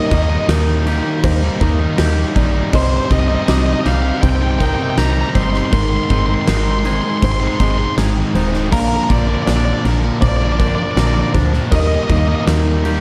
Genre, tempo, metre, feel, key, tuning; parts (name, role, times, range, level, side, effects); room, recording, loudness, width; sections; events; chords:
post-rock; 80 BPM; 4/4; straight; A4 = 439 Hz
octave-fuzz lead guitar; melody; 0.0-12.4 s; Bb4 to C6; -24 LUFS; equal; distortion, slapback echo
felt-muted upright piano; arpeggios; 0.0-13.0 s; Ab4 to D6; -30 LUFS; equal; slapback echo
twangy electric guitar; arpeggios; 0.0-13.0 s; Ab2 to Bb4; -30 LUFS; equal; vibrato effect, slapback echo
overdriven electric guitar; riff; 0.0-13.0 s; Ab2 to Eb4; -26 LUFS; equal
sludgy distorted guitar; riff; 0.0-13.0 s; Ab2 to Eb4; -24 LUFS; equal; overdrive
woody FM bass; bass; 0.1-13.0 s; Eb1 to Eb2; -20 LUFS; equal
huge arena drum kit; drums; 0.1-13.0 s; crash cymbal, kick drum, snare drum; -22 LUFS; equal
light reverb, small room reverb; dark, warm production; -16 LUFS; mono
0.0-13.0 A section
0.0 Eb; 2.7 Cm; 5.7 Ab; 8.7 Bb; 11.7 Eb